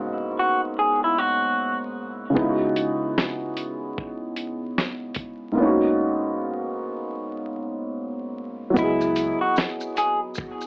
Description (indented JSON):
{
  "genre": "lo-fi hip hop",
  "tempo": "75 BPM",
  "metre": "4/4",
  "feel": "swing 60% on 16ths",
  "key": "C# dorian",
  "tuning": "A4 = 441 Hz",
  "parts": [
    { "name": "dark upright piano", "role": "accompaniment", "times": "0.0-10.7 s", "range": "G#2 to D#5", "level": "-24 LUFS", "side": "equal", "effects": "cassette tape, low-pass filter" },
    { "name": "electric guitar through a small old amp", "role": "melody", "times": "0.4-1.8, 8.8-10.2 s", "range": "E4 to G#4", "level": "-22 LUFS", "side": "equal", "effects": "low-pass filter, tape echo" },
    { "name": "dusty soul sampler-style drum kit", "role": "drums", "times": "2.4-10.7 s", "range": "hi-hat, kick drum, shaker, snare drum", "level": "-26 LUFS", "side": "equal", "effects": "none" },
    { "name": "upright bass", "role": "bass", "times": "8.8-9.3 s", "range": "C#2", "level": "-36 LUFS", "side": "equal", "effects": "none" }
  ],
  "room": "moderate studio reverb, RT60 0.5 s",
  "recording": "vinyl crackle, AM radio sound",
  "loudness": "-22 LUFS",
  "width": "side -29 dB against mid",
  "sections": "0.0-8.8 A section; 8.8-10.7 B section",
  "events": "none",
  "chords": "0.0 G#m11; 2.4 C#m11; 5.6 G#m11; 8.8 C#m11"
}